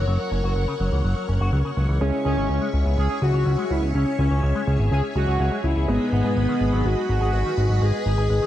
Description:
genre	italo disco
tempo	124 BPM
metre	4/4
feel	straight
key	unclear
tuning	A4 = 439 Hz
part	string machine, full ensemble	sustained chords	0.0-8.5 s	G#4 to C#6	-30 LUFS	equal	phaser, ensemble chorus
part	electric guitar with an envelope filter	arpeggios	0.0-8.5 s	C#3 to C#5	-32 LUFS	left 2 dB	vibrato effect, low-pass filter, ping-pong delay
part	warm grand piano	stabs	0.0-8.5 s	G#3 to A#4	-35 LUFS	right 3 dB	none
part	fat analog bass	bass	0.0-8.4 s	F#1 to G#2	-21 LUFS	equal	none
part	analog synth brass	melody	2.0-8.5 s	B3 to G#4	-25 LUFS	left 1 dB	chorus, tape echo
room	light reverb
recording	dark, warm production, vinyl crackle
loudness	-20 LUFS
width	side -12 dB against mid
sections	0.0-8.5 A section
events	none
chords	0.0 F#; 2.0 C#m; 5.9 G#m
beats	| 0.07 0.56 1.04 1.53 | 2.01 2.49 2.98 3.46 | 3.94 4.43 4.91 5.40 | 5.88 6.37 6.85 7.33 | 7.82 8.30

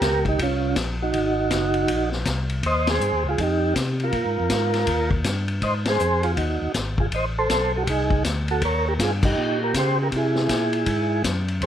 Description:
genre	soul jazz organ trio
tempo	160 BPM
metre	4/4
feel	swing 63% on 8ths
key	Eb mixolydian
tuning	A4 = 441 Hz
part	percussive tonewheel organ	melody	0.0-11.7 s	Db4 to Eb5	-23 LUFS	right 2 dB	slow rotary speaker, plate reverb
part	tonewheel organ	bass	0.0-11.7 s	Gb1 to Db3	-25 LUFS	equal	none
part	vintage drum kit	drums	0.0-11.7 s	crash cymbal, hi-hat, kick drum, ride cymbal, snare drum	-27 LUFS	left 2 dB	none
room	moderate studio reverb, RT60 0.7 s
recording	none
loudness	-20 LUFS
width	side -10 dB against mid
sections	0.0-11.7 A section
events	band accent 2.8, 5.8, 9.2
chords	0.0 Eb13 (rootless); 1.1 Ab9; 2.6 Eb13; 4.1 Bb5; 4.9 Ebadd9; 5.6 Ab6; 7.1 Adim; 8.6 Eb7; 10.1 Caug7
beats	0.02 0.39 0.77 | 1.14 1.51 1.89 2.26 | 2.63 3.01 3.38 3.75 | 4.13 4.50 4.88 5.25 | 5.62 6.00 6.37 6.75 | 7.12 7.50 7.87 8.24 | 8.62 8.99 9.37 9.74 | 10.12 10.49 10.87 11.24 | 11.62

